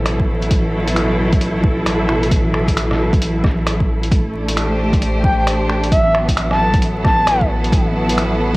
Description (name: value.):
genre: future garage.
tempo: 133 BPM.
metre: 4/4.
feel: swing 62% on 16ths.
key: unclear.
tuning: A4 = 439 Hz.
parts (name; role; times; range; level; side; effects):
bright studio string section; sustained chords; 0.0-8.6 s; B2 to C5; -19 LUFS; equal; sidechain pumping, cassette tape.
soft dub sub bass; bass; 0.0-8.6 s; A1; -21 LUFS; equal; sidechain pumping.
lo-fi sampler-style drum kit; drums; 0.1-8.6 s; finger snaps, hi-hat, rim click; -24 LUFS; equal; studio reverb, cassette tape.
electronic kick drum; drums; 0.2-8.6 s; none; -18 LUFS; equal; overdrive, studio reverb, cassette tape.
breathy flute-like synth lead; melody; 5.2-7.4 s; E5 to A5; -19 LUFS; equal; chorus, cassette tape, tape echo.
room: light reverb.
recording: home recording on cassette, vinyl crackle.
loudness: -14 LUFS.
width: side -21 dB against mid.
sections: 0.0-8.6 A section.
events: none.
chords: 0.0 D/A (rootless); 4.1 Am; 5.9 D/A; 7.7 B7sus4/A.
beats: 0.06 | 0.51 0.96 1.42 1.87 | 2.32 2.77 3.22 3.67 | 4.12 4.57 5.03 5.48 | 5.93 6.38 6.83 7.28 | 7.73 8.18.